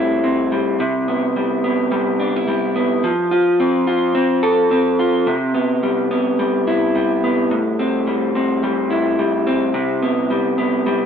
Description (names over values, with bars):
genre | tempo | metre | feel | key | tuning
indie pop | 107 BPM | 4/4 | swing 60% on 16ths | C major | A4 = 442 Hz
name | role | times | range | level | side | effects
electric guitar through a small old amp | solo | 0.0-11.1 s | A2 to A4 | -16 LUFS | equal | vibrato effect, tape echo
room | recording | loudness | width
wet studio reverb, RT60 0.8 s | band playing live in one room | -16 LUFS | side -8 dB against mid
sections
0.8-11.1 A section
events
none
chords
0.0 Am7; 0.8 Cmaj7; 3.0 F; 5.3 Cmaj7; 7.5 Am7; 9.7 Cmaj7